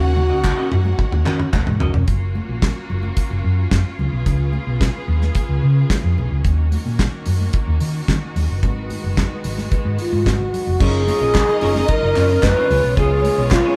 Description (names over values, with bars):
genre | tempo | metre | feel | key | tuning
disco | 110 BPM | 4/4 | straight | unclear | A4 = 439 Hz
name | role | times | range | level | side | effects
mellow wooden-headed alto flute | melody | 0.0-1.5, 10.0-13.8 s | E#4 to B4 | -21 LUFS | equal | none
warm studio string section | second line | 0.0-1.8, 10.8-13.8 s | C#4 to F#5 | -29 LUFS | equal | none
semi-hollow electric guitar | accompaniment | 0.0-2.0, 10.8-13.8 s | B3 to D#5 | -28 LUFS | equal | none
clear studio string section | sustained chords | 0.0-13.8 s | C#3 to G#4 | -32 LUFS | equal | none
hollow-body short-scale fingered electric bass | bass | 0.0-13.6 s | E#1 to D#3 | -22 LUFS | equal | none
damped 70s drum kit | drums | 0.2-13.6 s | crash cymbal, handclaps, hi-hat, kick drum, snare drum, toms | -23 LUFS | equal | none
congas | percussion | 0.2-13.6 s | none | -35 LUFS | equal | none
group handclap | percussion | 0.4-1.7, 11.3-13.6 s | none | -31 LUFS | equal | none
room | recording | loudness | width
moderate stone room reverb, RT60 1.0 s | band playing live in one room | -18 LUFS | mono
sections
0.0-2.1 A section; 2.1-10.8 B section; 10.8-13.8 C section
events
drum fill 0.0-2.1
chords
0.0 D#m7; 2.1 F#maj7; 4.0 C#7; 6.4 D#m7; 8.6 G#m7; 10.8 F#maj7; 12.7 C#7